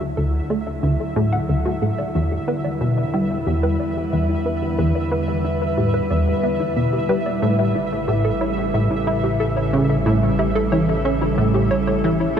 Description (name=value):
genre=ambient, sequencer-driven space music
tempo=91 BPM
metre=4/4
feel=straight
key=unclear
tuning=A4 = 439 Hz
part: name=evolving wavetable pad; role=sustained chords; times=0.0-12.4 s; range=C#3 to B4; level=-23 LUFS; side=equal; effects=chorus, built-in reverb, tremolo
part: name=warbly dusty pluck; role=arpeggios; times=0.0-12.4 s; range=E4 to F#5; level=-27 LUFS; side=equal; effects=chorus, auto-pan, ping-pong delay
part: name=fat analog bass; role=bass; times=0.0-12.4 s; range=A1 to E2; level=-29 LUFS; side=equal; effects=none
part: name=pulsing gated texture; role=texture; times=0.0-12.4 s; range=E5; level=-29 LUFS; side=right 4 dB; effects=chorus, built-in reverb
part: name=plucky analog bass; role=riff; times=0.2-12.4 s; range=D2 to E4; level=-21 LUFS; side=equal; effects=analog chorus, ping-pong delay
room=wet huge ambient reverb, RT60 7.7 s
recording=in a vast, echoing space, cassette tape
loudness=-18 LUFS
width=side -8 dB against mid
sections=0.0-12.4 A section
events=fade-in on ambient pad 0.0-12.4; fade-in on analog synth bass 0.0-12.4; fade-in on synth texture 0.0-12.4; filter sweep on analog synth bass 0.0-12.4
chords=0.0 Dadd9; 2.1 Em7; 7.4 A7